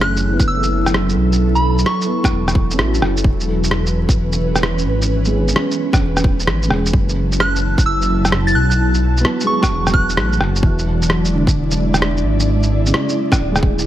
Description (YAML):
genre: future garage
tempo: 130 BPM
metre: 4/4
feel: swing 66% on 16ths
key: F# minor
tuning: A4 = 440 Hz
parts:
  - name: soft synth bell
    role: melody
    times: 0.0-2.2, 7.4-10.3 s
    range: B5 to A6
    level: -21 LUFS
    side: right 1 dB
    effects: chorus, dub echo
  - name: felt-muted upright piano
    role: accompaniment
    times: 0.0-13.9 s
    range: C#3 to F#4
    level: -24 LUFS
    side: right 1 dB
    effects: sidechain pumping, ping-pong delay
  - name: ethereal airy pad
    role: sustained chords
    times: 0.0-13.9 s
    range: E3 to A5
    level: -21 LUFS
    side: equal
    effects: ensemble chorus, built-in reverb, sidechain pumping
  - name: dark detuned saw bass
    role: bass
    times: 0.0-13.9 s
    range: D1 to B1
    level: -18 LUFS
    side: equal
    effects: sidechain pumping
  - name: electronic rim click and shaker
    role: drums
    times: 0.0-13.8 s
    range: none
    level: -20 LUFS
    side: equal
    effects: none
  - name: electronic kick drum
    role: drums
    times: 0.4-13.8 s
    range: none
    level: -15 LUFS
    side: equal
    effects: none
room: light reverb, digital ambience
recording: vinyl crackle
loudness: -14 LUFS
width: side -12 dB against mid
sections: 0.0-13.9 A section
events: none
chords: 0.0 F#m7; 3.2 C#m7/E; 6.9 F#m7; 10.6 E7